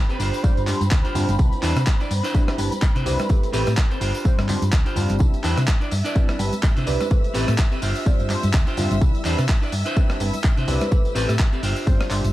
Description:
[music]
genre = filtered disco house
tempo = 126 BPM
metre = 4/4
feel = swing 57% on 16ths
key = C major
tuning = A4 = 439 Hz
[part]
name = dark studio string section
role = sustained chords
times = 0.0-12.3 s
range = C4 to E6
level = -33 LUFS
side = equal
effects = sidechain pumping
[part]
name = clean electric guitar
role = riff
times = 0.1-12.3 s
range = C4 to D5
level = -29 LUFS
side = right 1 dB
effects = sidechain pumping
[part]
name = dusty soul sampler-style drum kit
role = drums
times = 0.1-12.3 s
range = handclaps, hi-hat, rim click, tambourine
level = -30 LUFS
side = equal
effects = overdrive, small room ambience, sidechain pumping on hats, sidechain pumping on perc
[part]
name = tambourine and congas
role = percussion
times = 0.1-12.3 s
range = none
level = -33 LUFS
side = right 1 dB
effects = sidechain pumping on perc
[part]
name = hollow-body short-scale fingered electric bass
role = bass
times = 0.2-12.3 s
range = G1 to C3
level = -22 LUFS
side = equal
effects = sidechain pumping
[part]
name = funky polysynth comp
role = accompaniment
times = 0.4-12.3 s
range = G3 to C5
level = -28 LUFS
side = equal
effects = chorus, phaser, sidechain pumping
[part]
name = electronic kick drum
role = drums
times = 0.4-12.0 s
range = none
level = -19 LUFS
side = equal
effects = small room ambience
[sound]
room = little or no reverb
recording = dark, warm production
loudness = -18 LUFS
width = side -16 dB against mid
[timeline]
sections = 0.0-12.3 A section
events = none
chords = 0.2 G7sus4; 1.4 Cmaj9; 3.3 Am9; 4.0 G7sus4; 5.2 Cmaj9; 7.1 Am9; 7.8 G7sus4; 9.0 Cmaj9; 10.9 Am9; 11.6 G7sus4

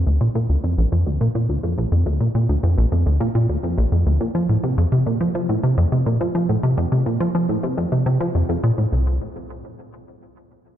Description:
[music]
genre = ambient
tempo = 105 BPM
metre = 4/4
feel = straight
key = unclear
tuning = A4 = 441 Hz
[part]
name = plucky analog bass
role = solo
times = 0.0-9.2 s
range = Bb1 to F3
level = -18 LUFS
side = equal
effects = analog chorus, ping-pong delay
[sound]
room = moderate plate reverb, RT60 3.6 s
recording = dreamy mix soaked in reverb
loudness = -17 LUFS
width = side -11 dB against mid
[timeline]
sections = 0.0-8.9 A section; 8.9-10.8 B section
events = none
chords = none

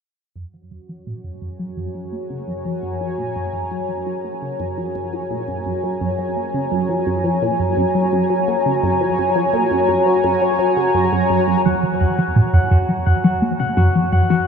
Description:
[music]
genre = ambient, sequencer-driven space music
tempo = 85 BPM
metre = 4/4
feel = straight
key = Gb major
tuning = A4 = 439 Hz
[part]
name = sweeping resonant pad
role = sustained chords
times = 0.4-14.5 s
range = Gb4 to Bb5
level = -20 LUFS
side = equal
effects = chorus
[part]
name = resonant blip pluck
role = riff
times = 0.4-14.4 s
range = Gb2 to Bb3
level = -19 LUFS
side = equal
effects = phaser, analog delay
[part]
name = concert harp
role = arpeggios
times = 11.7-14.5 s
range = Gb4 to Gb5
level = -22 LUFS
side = equal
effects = auto-pan, low-pass filter, analog delay
[sound]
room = wet huge ambient reverb, RT60 7.3 s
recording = in a vast, echoing space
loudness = -16 LUFS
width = side -6 dB against mid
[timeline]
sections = 0.4-11.7 A section; 11.7-14.5 B section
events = fade-in on synth arpeggio sound 0.4-11.7; filter sweep on analog synth pad 0.4-11.7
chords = 0.4 Gb

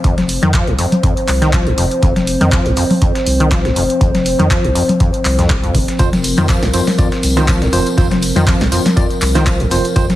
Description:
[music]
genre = acid house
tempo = 121 BPM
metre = 4/4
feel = swing 55% on 16ths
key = unclear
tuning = A4 = 441 Hz
[part]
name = dark analog pad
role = sustained chords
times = 0.0-10.2 s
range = F3 to C5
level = -19 LUFS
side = equal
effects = lush chorus, sidechain pumping
[part]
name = liquid acid bass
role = riff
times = 0.0-10.1 s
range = F1 to F3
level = -19 LUFS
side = equal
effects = chorus, overdrive, sidechain pumping, ping-pong delay
[part]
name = saturated sub bass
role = bass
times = 0.0-10.2 s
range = F1 to F2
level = -18 LUFS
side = equal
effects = tube saturation, sidechain pumping
[part]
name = dusty soul sampler-style drum kit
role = drums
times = 0.0-10.2 s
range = hi-hat, snare drum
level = -29 LUFS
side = left 1 dB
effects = sidechain pumping on hats, high-pass filter on hats, high-pass filter on snare
[part]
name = electronic kick drum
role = drums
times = 0.0-10.1 s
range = none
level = -16 LUFS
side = equal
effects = none
[part]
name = punchy analog drum machine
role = drums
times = 0.0-10.2 s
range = congas, handclaps, hi-hat, snare drum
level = -18 LUFS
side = left 1 dB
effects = overdrive
[part]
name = tine electric piano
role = stabs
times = 6.0-10.0 s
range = C4 to D5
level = -21 LUFS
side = right 1 dB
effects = medium stereo tremolo, ping-pong delay
[part]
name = tambourine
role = percussion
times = 6.0-10.2 s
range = none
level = -27 LUFS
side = left 4 dB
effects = none
[sound]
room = light reverb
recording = heavily compressed radio sound, multiband compression, lossy compression artefacts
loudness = -11 LUFS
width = side -14 dB against mid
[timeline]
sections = 0.0-10.2 A section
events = none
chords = 0.0 F5

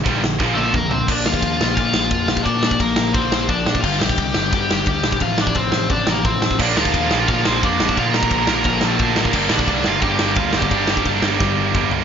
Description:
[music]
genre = punk rock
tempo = 174 BPM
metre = 4/4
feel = straight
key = unclear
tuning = A4 = 440 Hz
[part]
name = sludgy distorted guitar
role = riff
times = 0.0-12.0 s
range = F2 to Bb3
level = -24 LUFS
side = left 11 dB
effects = overdrive
[part]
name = tight distorted guitar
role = riff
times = 0.0-1.1, 6.6-12.0 s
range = G2 to D4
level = -21 LUFS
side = right 11 dB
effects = distortion
[part]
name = overdriven picked electric bass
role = bass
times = 0.1-12.0 s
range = G1 to Bb2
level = -25 LUFS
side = equal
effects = none
[part]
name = big rock drum kit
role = drums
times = 0.1-12.0 s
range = crash cymbal, kick drum, ride cymbal, snare drum, toms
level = -20 LUFS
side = equal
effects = none
[part]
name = cranked stack guitar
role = melody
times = 0.6-11.9 s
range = A3 to Bb5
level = -21 LUFS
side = right 1 dB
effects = overdrive
[sound]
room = little or no reverb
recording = nothing above 7.4 kHz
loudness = -16 LUFS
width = side -7 dB against mid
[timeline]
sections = 0.0-1.1 A section; 1.1-12.0 B section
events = drum fill 0.4-1.1, 11.4-12.0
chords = 0.4 Bb; 3.8 Gm; 5.2 F/A; 6.6 Bb; 9.3 Gm

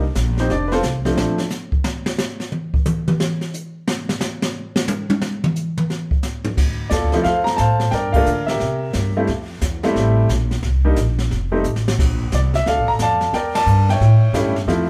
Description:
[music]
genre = jazz piano trio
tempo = 178 BPM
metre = 4/4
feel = swing 64% on 8ths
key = D minor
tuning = A4 = 440 Hz
[part]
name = upright bass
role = bass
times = 0.0-1.3, 6.6-14.9 s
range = F1 to D3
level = -21 LUFS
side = equal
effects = none
[part]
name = jazz brush drum kit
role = drums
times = 0.2-14.9 s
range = brushed snare drum, crash cymbal, hi-hat, kick drum, ride cymbal, snare drum, toms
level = -25 LUFS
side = equal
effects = none
[part]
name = clear concert grand piano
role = melody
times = 0.4-1.4, 6.9-14.9 s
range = F3 to Bb5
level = -21 LUFS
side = equal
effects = none
[sound]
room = moderate large studio reverb, RT60 0.9 s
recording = band playing live in one room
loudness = -19 LUFS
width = mono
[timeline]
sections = 0.0-6.6 A section; 6.6-14.9 B section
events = grand piano solo 0.0-6.6; drum solo 1.2-6.6; band accent 8.1, 13.5; drum fill 11.6-12.0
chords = 0.0 Cm7; 0.5 F; 1.2 N.C.; 6.6 Dm7; 7.9 Gm7; 8.6 C7; 9.3 Fmaj7; 10.6 C7(no3); 11.3 F; 12.0 Bbmaj7; 13.3 Em7b5; 14.0 A7

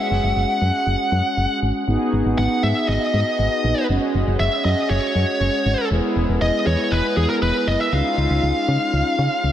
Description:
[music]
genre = synth-pop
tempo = 119 BPM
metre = 4/4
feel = straight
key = unclear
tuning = A4 = 440 Hz
[part]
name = high-gain lead guitar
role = melody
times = 0.0-9.5 s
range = G#4 to F#5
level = -22 LUFS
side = equal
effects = distortion, analog delay
[part]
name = mellow synth brass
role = accompaniment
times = 0.0-9.5 s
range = G#3 to G#4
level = -23 LUFS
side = equal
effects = chorus
[part]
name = solid FM bass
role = bass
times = 0.1-9.5 s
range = E1 to C#3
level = -20 LUFS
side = equal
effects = none
[sound]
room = wet plate reverb, RT60 3.6 s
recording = dreamy mix soaked in reverb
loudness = -17 LUFS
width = side -11 dB against mid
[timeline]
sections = 0.0-9.5 A section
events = none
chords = 0.0 F#sus2; 1.9 G#m7; 3.9 F#sus2; 5.9 E; 7.9 C#add9

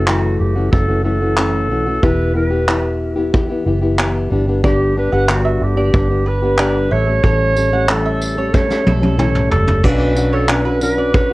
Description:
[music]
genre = acoustic pop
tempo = 92 BPM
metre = 4/4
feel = straight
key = B minor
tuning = A4 = 435 Hz
[part]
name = clear clarinet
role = melody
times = 0.0-11.3 s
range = F#4 to C#5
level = -20 LUFS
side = right 1 dB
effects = analog delay
[part]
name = fingerpicked plugged-in steel-string acoustic guitar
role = accompaniment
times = 0.0-11.3 s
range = F#2 to A4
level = -19 LUFS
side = left 2 dB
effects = none
[part]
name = vintage muted fingered electric bass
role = bass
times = 0.0-11.3 s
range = E1 to B1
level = -19 LUFS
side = equal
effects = none
[part]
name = soft brush drum kit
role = drums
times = 0.1-11.3 s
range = crash cymbal, handclaps, kick drum, snare drum, tambourine, toms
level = -17 LUFS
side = equal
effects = none
[part]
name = mandolin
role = arpeggios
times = 4.6-11.3 s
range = A4 to F#5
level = -26 LUFS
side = right 3 dB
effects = plate reverb
[sound]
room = moderate studio reverb, RT60 0.5 s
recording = worn, warbling old tape, cassette tape, warbly pitch drift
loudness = -13 LUFS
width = side -20 dB against mid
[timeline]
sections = 0.0-9.8 A section; 9.8-11.3 B section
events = drum fill 8.5-9.8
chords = 0.0 F#m7; 2.0 Em; 4.3 G; 6.9 A7; 9.8 Bmadd9

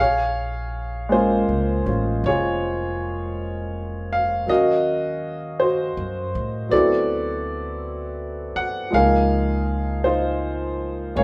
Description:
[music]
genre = jazz ballad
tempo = 54 BPM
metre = 4/4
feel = swing 66% on 8ths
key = Bb minor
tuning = A4 = 440 Hz
[part]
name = clear upright piano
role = accompaniment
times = 0.0-11.2 s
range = F3 to F#5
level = -23 LUFS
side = equal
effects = none
[part]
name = upright bass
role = bass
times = 0.0-11.2 s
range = F1 to A2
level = -30 LUFS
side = equal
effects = none
[sound]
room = moderate large studio reverb, RT60 1.2 s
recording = band playing live in one room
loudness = -23 LUFS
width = mono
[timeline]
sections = 0.0-11.2 A section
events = none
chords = 0.0 Bbm7; 4.5 Ebm7; 6.7 D13; 8.9 Db69

